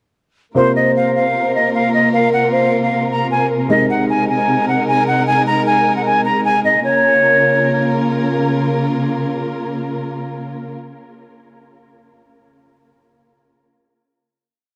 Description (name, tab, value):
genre	hip hop, trap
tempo	153 BPM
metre	4/4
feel	half-time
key	Bb minor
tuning	A4 = 440 Hz
part	dark baby grand piano	accompaniment	0.5-6.6 s	C3 to Bb4	-24 LUFS	equal	none
part	silver concert flute	melody	0.6-8.0 s	C5 to Bb5	-18 LUFS	equal	none
part	warm velvety synth lead	second line	0.6-3.7 s	Bb4 to C5	-23 LUFS	equal	chorus, delay
part	dark studio string section	sustained chords	0.6-10.7 s	C3 to Bb4	-21 LUFS	equal	none
room	moderate huge ambient reverb, RT60 7.1 s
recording	dark, warm production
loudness	-16 LUFS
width	mono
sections	0.6-6.8 breakdown; 6.8-10.0 final chord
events	none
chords	0.6 Bbsus2; 3.7 Abadd9; 6.8 Bbm